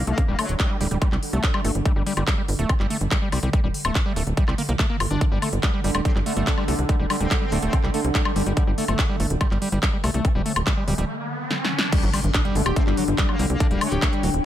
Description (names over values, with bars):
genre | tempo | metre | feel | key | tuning
psychedelic trance | 143 BPM | 4/4 | straight | G harmonic minor | A4 = 442 Hz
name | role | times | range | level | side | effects
metallic wobble bass | second line | 0.0-0.7, 6.1-7.8, 12.8-14.1 s | F#3 to C4 | -36 LUFS | left 2 dB | chorus, sidechain pumping, high-pass filter, dub echo
pulsing gated texture | sustained chords | 0.0-14.4 s | D3 | -30 LUFS | right 2 dB | chorus, built-in reverb, sidechain pumping
tight sequencer bass | bass | 0.0-14.4 s | D1 to C2 | -24 LUFS | equal | none
overdriven acid bass | riff | 0.1-14.3 s | F#3 to G4 | -28 LUFS | moving between left 4 dB and right 4 dB | auto-pan, sidechain pumping, dub echo
techno drum kit | drums | 0.1-14.4 s | crash cymbal, handclaps, hi-hat, snare drum, woodblock | -27 LUFS | left 1 dB | none
electronic kick drum | drums | 0.2-14.1 s | none | -22 LUFS | equal | overdrive
riser and impact | sound effects | 10.4-13.6 s | none | -31 LUFS | equal | none
warbly tape-like pad | texture | 11.9-14.4 s | D4 to G5 | -29 LUFS | left 5 dB | chorus, built-in reverb, sidechain pumping
room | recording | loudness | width
digital ambience | none | -20 LUFS | side -12 dB against mid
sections
0.0-11.9 A section; 11.9-14.4 B section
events
riser 10.4-11.9; break 11.1-11.9; drum fill 11.5-11.9; drop 11.9-14.4; impact 11.9-13.6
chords
0.0 G5